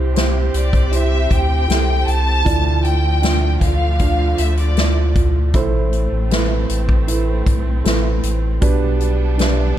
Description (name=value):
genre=pop ballad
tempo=78 BPM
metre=4/4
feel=straight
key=C major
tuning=A4 = 440 Hz
part: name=felt-muted upright piano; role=accompaniment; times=0.0-9.8 s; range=A2 to F5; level=-22 LUFS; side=right 6 dB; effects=none
part: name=bright studio string section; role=sustained chords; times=0.0-9.8 s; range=C3 to G4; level=-28 LUFS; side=equal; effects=none
part: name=saturated sub bass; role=bass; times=0.0-9.7 s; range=A1 to D2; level=-17 LUFS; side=equal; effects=none
part: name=unplugged drum kit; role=drums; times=0.2-9.6 s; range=hi-hat, kick drum, snare drum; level=-19 LUFS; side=left 1 dB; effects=none
part: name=rich studio violin section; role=melody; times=0.6-5.1 s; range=D5 to A5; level=-22 LUFS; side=left 1 dB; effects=none
room=light reverb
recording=dark, warm production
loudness=-14 LUFS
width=side -11 dB against mid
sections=0.0-9.8 A section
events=felt piano fill 9.4-9.8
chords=0.0 C; 2.5 Dmadd9; 5.5 Am; 8.6 G/B